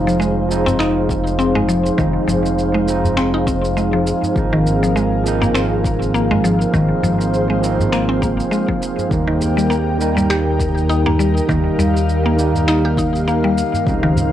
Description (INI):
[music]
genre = organic downtempo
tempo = 101 BPM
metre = 4/4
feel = swing 57% on 16ths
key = unclear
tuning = A4 = 442 Hz
[part]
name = overdriven tine electric piano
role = accompaniment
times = 0.0-14.3 s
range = Eb3 to Eb4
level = -22 LUFS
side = right 7 dB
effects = sidechain pumping, cassette tape, analog delay
[part]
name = airy breathy pad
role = sustained chords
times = 0.0-14.3 s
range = C4 to G5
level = -20 LUFS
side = left 2 dB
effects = chorus, sidechain pumping, cassette tape
[part]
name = smooth synth bass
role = bass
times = 0.0-14.3 s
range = F1 to Eb2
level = -20 LUFS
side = left 1 dB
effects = none
[part]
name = mallet-like synth pluck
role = arpeggios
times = 0.1-14.2 s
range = Eb3 to G4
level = -20 LUFS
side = left 1 dB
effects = chorus, cassette tape, analog delay
[part]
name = electronic shaker and finger snaps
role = drums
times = 0.1-14.3 s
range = none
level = -29 LUFS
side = equal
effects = overdrive, cassette tape
[part]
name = udu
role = percussion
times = 0.7-14.3 s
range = none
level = -25 LUFS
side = right 2 dB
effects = none
[part]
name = electronic kick drum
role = drums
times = 1.1-14.0 s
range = none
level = -23 LUFS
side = left 1 dB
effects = overdrive, cassette tape
[sound]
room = moderate studio reverb, RT60 0.5 s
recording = home recording on cassette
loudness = -14 LUFS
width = side -11 dB against mid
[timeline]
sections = 0.0-14.3 A section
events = none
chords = 0.0 Fm7; 4.4 Ab69; 9.1 Eb